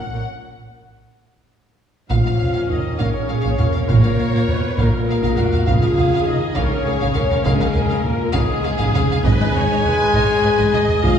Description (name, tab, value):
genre	cinematic, epic orchestral film score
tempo	67 BPM (dotted quarters)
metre	6/8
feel	straight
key	unclear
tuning	A4 = 441 Hz
part	warm symphonic violin section	melody	0.0-11.1 s	D#5 to F#5	-29 LUFS	left 2 dB	none
part	dark symphonic violin section	second line	0.0-11.2 s	G#4 to G#5	-29 LUFS	left 4 dB	none
part	warm symphonic viola section	accompaniment	0.0-11.2 s	C#4 to D#5	-27 LUFS	right 1 dB	none
part	mellow French horn section	sustained chords	0.0-11.2 s	G#3 to G#4	-23 LUFS	left 3 dB	none
part	dark chamber double bass section	bass	0.0-11.1 s	G#1 to C#2	-23 LUFS	right 2 dB	none
part	warm symphonic cello section	bass	0.0-11.1 s	G#2 to C#3	-26 LUFS	right 1 dB	none
part	warm trombone section	sustained chords	2.1-11.2 s	G#2 to G#3	-27 LUFS	right 1 dB	none
part	warm trumpet section	stabs	2.1-11.2 s	G#4 to G#5	-26 LUFS	equal	none
part	taiko ensemble	drums	2.1-11.2 s	none	-21 LUFS	equal	none
part	timpani	percussion	9.2-10.1 s	G#2	-27 LUFS	right 1 dB	none
room	wet scoring stage reverb, RT60 1.8 s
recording	heard from further back in the room, small room ambience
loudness	-15 LUFS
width	side -8 dB against mid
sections	0.0-2.1 A section; 2.1-11.2 A section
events	break 0.3-2.1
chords	0.3 N.C.; 2.1 A#m; 5.7 C#; 9.2 G#5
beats	| 0.28 1.20 | 2.11 3.00 | 3.90 4.79 | 5.68 6.57 | 7.45 8.34 | 9.25 10.14 | 11.03